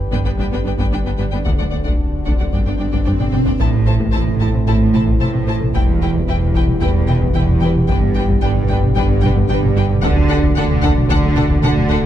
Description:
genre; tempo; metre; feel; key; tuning
cinematic, hybrid orchestral and electronic film score; 112 BPM; 4/4; straight; A minor; A4 = 441 Hz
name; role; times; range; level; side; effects
analog drone; sustained chords; 0.0-12.1 s; D3 to D5; -26 LUFS; left 1 dB; chorus
rubbery square bass; riff; 0.0-12.1 s; D2 to A3; -23 LUFS; right 2 dB; none
pure sine sub bass; bass; 0.0-12.1 s; D1 to A1; -25 LUFS; left 1 dB; none
warm studio violin section; second line; 0.1-12.0 s; A4 to G5; -30 LUFS; left 6 dB; none
warm symphonic viola section; accompaniment; 0.1-12.0 s; A3 to E4; -29 LUFS; right 2 dB; none
soft round pluck; arpeggios; 0.1-12.1 s; D3 to A4; -27 LUFS; left 5 dB; none
rich symphonic cello section; bass; 0.1-12.1 s; D2 to D3; -22 LUFS; right 3 dB; none
warm symphonic double bass section; bass; 0.1-12.1 s; E1 to D2; -22 LUFS; right 4 dB; none
taiko ensemble; drums; 0.1-12.1 s; none; -19 LUFS; left 1 dB; none
swell and impact; sound effects; 2.1-5.7 s; none; -26 LUFS; equal; none
warm studio violin section; melody; 3.6-12.0 s; F#5 to A5; -27 LUFS; left 3 dB; none
dark French horn section; sustained chords; 3.6-12.1 s; B3 to G4; -26 LUFS; left 4 dB; none
warm trombone section; sustained chords; 3.6-12.1 s; D3 to A3; -27 LUFS; right 5 dB; none
room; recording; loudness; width
moderate recital hall reverb, RT60 1.6 s; dark, warm production; -14 LUFS; side -11 dB against mid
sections
0.0-3.6 A section; 3.6-12.1 A section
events
swell 2.1-3.6; drum fill 3.1-3.6; impact 3.6-5.7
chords
0.0 G; 1.5 D; 2.5 G; 3.6 Am; 5.7 Em; 7.9 G; 10.0 D

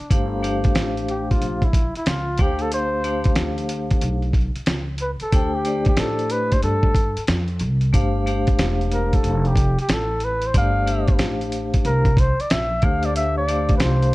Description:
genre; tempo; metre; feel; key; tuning
hip hop, jazz-hop; 92 BPM; 4/4; swing 64% on 16ths; G dorian; A4 = 441 Hz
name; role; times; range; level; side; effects
trumpet with bucket mute; melody; 0.0-14.1 s; D4 to F5; -24 LUFS; equal; none
upright bass; bass; 0.0-14.1 s; E1 to A2; -24 LUFS; equal; none
vibraphone with hard mallets; accompaniment; 0.1-14.1 s; A3 to G5; -25 LUFS; left 2 dB; none
dusty soul sampler-style drum kit; drums; 0.1-14.1 s; hi-hat, kick drum, snare drum; -20 LUFS; equal; none
room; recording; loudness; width
small room ambience; worn, warbling old tape, cassette tape, warbly pitch drift; -18 LUFS; side -19 dB against mid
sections
0.0-14.1 A section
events
muted trumpet solo 0.0-14.1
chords
0.0 Gm9; 2.4 Dm7; 7.9 G7sus2; 12.8 Dm7

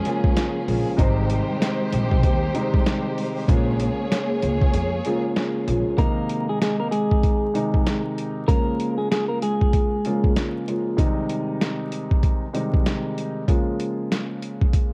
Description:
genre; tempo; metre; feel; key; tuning
hip hop, boom-bap hip-hop; 96 BPM; 4/4; swing 61% on 16ths; Ab major; A4 = 441 Hz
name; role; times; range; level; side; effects
clean electric guitar; melody; 0.0-0.3, 6.0-10.3 s; Ab3 to Bb4; -28 LUFS; equal; high-pass filter, low-pass filter, cassette tape, tape echo
warm studio string section; stabs; 0.0-5.9 s; F3 to Db5; -29 LUFS; equal; high-pass filter, low-pass filter, cassette tape, tape echo
dark concert grand piano; accompaniment; 0.1-14.9 s; C3 to F4; -28 LUFS; equal; high-pass filter, low-pass filter, cassette tape
boom bap sampler-style drum kit; drums; 0.1-14.9 s; hi-hat, kick drum, snare drum; -24 LUFS; equal; cassette tape
upright bass; bass; 0.7-5.8 s; Ab1 to F2; -27 LUFS; equal; none
room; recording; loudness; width
little or no reverb; home recording on cassette, vinyl crackle; -22 LUFS; mono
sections
0.0-6.0 A section; 6.0-14.9 B section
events
break 4.7-6.0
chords
0.0 Bbm7; 1.0 Abmaj7; 3.5 Bbm7; 6.0 Ab; 8.5 Bbm7; 11.0 Abmaj7; 13.5 Bbm7

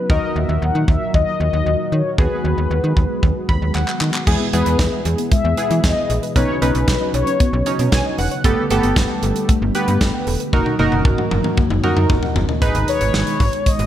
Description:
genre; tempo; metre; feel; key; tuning
synth-pop; 115 BPM; 4/4; straight; unclear; A4 = 440 Hz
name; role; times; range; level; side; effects
mellow synth brass; melody; 0.0-8.1, 12.9-13.9 s; G#4 to F#5; -23 LUFS; left 4 dB; chorus, digital delay
warm analog keys; accompaniment; 0.0-13.4 s; B3 to B5; -23 LUFS; right 2 dB; chorus
string machine, cellos; sustained chords; 0.0-13.9 s; A#2 to G#4; -26 LUFS; equal; ensemble chorus
slap-like FM bass; bass; 0.1-13.9 s; E1 to E3; -20 LUFS; equal; none
modern studio drum kit; drums; 0.1-13.9 s; crash cymbal, handclaps, hi-hat, kick drum, snare drum, toms; -19 LUFS; equal; gated reverb
soft round pluck; arpeggios; 4.3-12.6 s; G#3 to G5; -25 LUFS; left 3 dB; chorus, digital delay
room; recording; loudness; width
light reverb, small room ambience; none; -15 LUFS; side -11 dB against mid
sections
0.0-4.3 A section; 4.3-12.6 B section; 12.6-13.9 C section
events
synth keys fill 3.2-4.3, 7.7-8.4; drum fill 3.7-4.3, 10.5-12.6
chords
0.1 D#m; 2.2 G#m7/D#; 4.3 E; 6.4 Badd9; 8.4 Gadd9; 10.5 F#6; 12.6 G#m

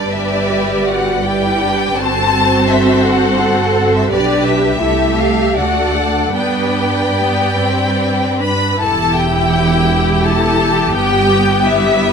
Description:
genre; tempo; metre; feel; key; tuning
classical, slow romantic movement for string orchestra; 71-86 BPM; 3/4; rubato; G major, E minor from 8.8 s; A4 = 440 Hz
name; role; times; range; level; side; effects
rich symphonic violin section; melody; 0.0-12.1 s; D5 to B5; -18 LUFS; left 4 dB; none
clear symphonic violin section; second line; 0.0-12.1 s; E4 to E5; -20 LUFS; left 2 dB; none
clear symphonic viola section; accompaniment; 0.0-12.1 s; G3 to G4; -18 LUFS; equal; none
warm studio cello section; bass; 0.0-12.1 s; E2 to B4; -20 LUFS; right 4 dB; none
warm symphonic double bass section; bass; 0.0-12.1 s; E1 to G2; -19 LUFS; right 3 dB; none
room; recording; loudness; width
moderate scoring stage reverb, RT60 1.9 s; none; -12 LUFS; side -6 dB against mid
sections
0.0-8.8 A section; 8.8-12.1 B section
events
none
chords
0.0 G; 2.0 F#dim/G; 4.1 G/B; 4.8 Am7/C; 5.6 D; 6.4 G; 8.8 Em; 11.0 Em/G

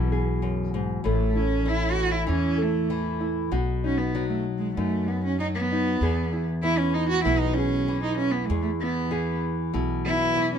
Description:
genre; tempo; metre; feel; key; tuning
acoustic folk duo or small band; 97 BPM; 4/4; straight; E major; A4 = 440 Hz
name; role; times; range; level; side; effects
warm cello; second line; 0.0-10.6 s; G#3 to F#4; -26 LUFS; right 3 dB; none
nylon-string guitar; accompaniment; 0.0-10.6 s; E2 to A4; -28 LUFS; left 1 dB; none
upright bass; bass; 0.0-10.6 s; A1 to F#2; -28 LUFS; left 1 dB; none
room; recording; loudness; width
light reverb; minimal, uncompressed stereo recording; -23 LUFS; side -8 dB against mid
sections
0.0-10.6 A section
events
cello solo 0.0-10.6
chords
0.0 E; 1.1 A; 3.5 B; 6.0 E

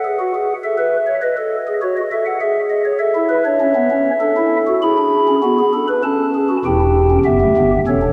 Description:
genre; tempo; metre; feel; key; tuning
classical, baroque-style 4-part fugue for pipe organ; 99 BPM; 3/4; straight; A major; A4 = 440 Hz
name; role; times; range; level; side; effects
pipe organ, stopped flute; solo; 0.0-8.1 s; E1 to B5; -16 LUFS; equal; none
room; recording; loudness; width
wet cathedral reverb, RT60 4.2 s; none; -16 LUFS; mono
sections
0.0-6.7 A section; 6.7-8.1 B section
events
none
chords
0.0 N.C.; 0.6 Aadd9; 1.2 B (rootless); 2.4 E/G#; 3.0 A; 4.2 Dadd9; 4.8 E (rootless); 6.0 A/C#; 6.7 Em

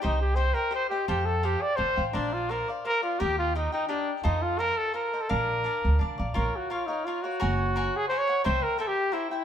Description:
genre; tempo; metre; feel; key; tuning
mexican folk, mariachi; 172 BPM; 3/4; straight; Bb major, Bb minor from 6.4 s; A4 = 440 Hz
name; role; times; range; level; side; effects
warm trumpet; melody; 0.0-9.4 s; D4 to D5; -27 LUFS; equal; none
cavaquinho; accompaniment; 0.0-9.4 s; D4 to Ab5; -33 LUFS; left 2 dB; none
upright bass; bass; 0.0-8.6 s; Gb1 to F2; -28 LUFS; right 1 dB; none
room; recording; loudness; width
moderate stone room reverb, RT60 1.2 s; band playing live in one room; -25 LUFS; side -9 dB against mid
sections
0.0-6.4 A section; 6.4-9.4 B section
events
none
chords
0.0 Cm; 1.1 Fadd9; 2.1 Bbadd9; 3.2 Eb; 4.2 F7; 5.3 Bb; 6.4 Bbm; 7.4 Gbadd9; 8.5 C7

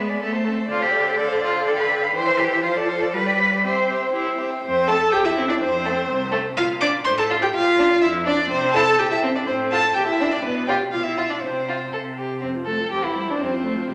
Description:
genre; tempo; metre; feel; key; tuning
quick classical-period movement for string quartet; 124 BPM; 2/4; straight; C major, F major from 4.6 s; A4 = 441 Hz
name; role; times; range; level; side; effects
rich violin; melody; 0.0-13.9 s; B4 to D6; -27 LUFS; equal; none
rich violin; second line; 0.0-13.9 s; A3 to F5; -29 LUFS; equal; none
warm viola; accompaniment; 0.0-13.9 s; C3 to D5; -25 LUFS; equal; none
rich cello; bass; 0.0-13.9 s; C2 to C5; -28 LUFS; equal; none
room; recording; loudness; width
wet recital hall reverb, RT60 1.6 s; none; -21 LUFS; mono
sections
0.0-4.6 A section; 4.6-12.4 B section; 12.4-13.9 B section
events
none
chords
0.2 Am; 0.7 Dm7; 1.7 G7/D; 2.1 C/E; 2.6 Dm7/F; 3.1 G7; 3.6 C; 4.6 F; 5.1 C/E; 5.6 F; 6.6 Bb; 7.1 F/A; 7.5 Bb; 8.5 C; 9.0 C7/Bb; 9.5 F/A; 10.0 Gm6/Bb; 10.4 B(b5, no3); 11.4 F5/C; 12.4 F; 12.9 C/E; 13.4 F

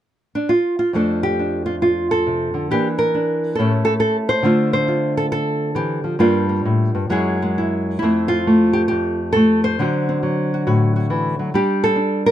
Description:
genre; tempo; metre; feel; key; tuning
solo jazz; 136 BPM; 4/4; swing 66% on 8ths, rubato; F major; A4 = 440 Hz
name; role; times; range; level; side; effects
nylon-string guitar; solo; 0.4-12.3 s; F2 to C5; -16 LUFS; equal; none
room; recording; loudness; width
light reverb; close, detailed microphones; -16 LUFS; side -11 dB against mid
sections
0.9-8.0 A section; 8.0-12.3 B section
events
none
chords
0.0 N.C.; 0.9 F6; 2.7 Em7b5; 3.6 A7; 4.4 Dm7; 6.2 Gm7; 7.1 Gbsus2; 8.0 Fmaj9; 9.8 D7; 11.5 Gsus2

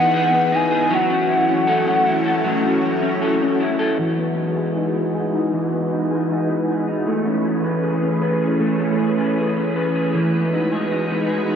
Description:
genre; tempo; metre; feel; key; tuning
dream pop; 78 BPM; 4/4; straight; E major; A4 = 440 Hz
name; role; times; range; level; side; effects
warbly nostalgic lead; melody; 0.0-3.2 s; F#5 to G#5; -20 LUFS; equal; chorus, tremolo, tape echo
soft string machine; sustained chords; 0.0-11.6 s; E3 to C#5; -22 LUFS; equal; ensemble chorus, low-pass filter
electric guitar at the edge of break-up; arpeggios; 0.0-11.6 s; E3 to B4; -20 LUFS; left 1 dB; analog chorus, low-pass filter, tape echo
room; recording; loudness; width
wet huge ambient reverb, RT60 8.2 s; none; -17 LUFS; side -8 dB against mid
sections
0.0-4.0 A section; 4.0-11.6 B section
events
filter sweep 4.0-11.6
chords
0.0 Emaj7; 0.9 F#m7; 4.0 Emaj9; 7.1 Amaj9; 10.1 Emaj9

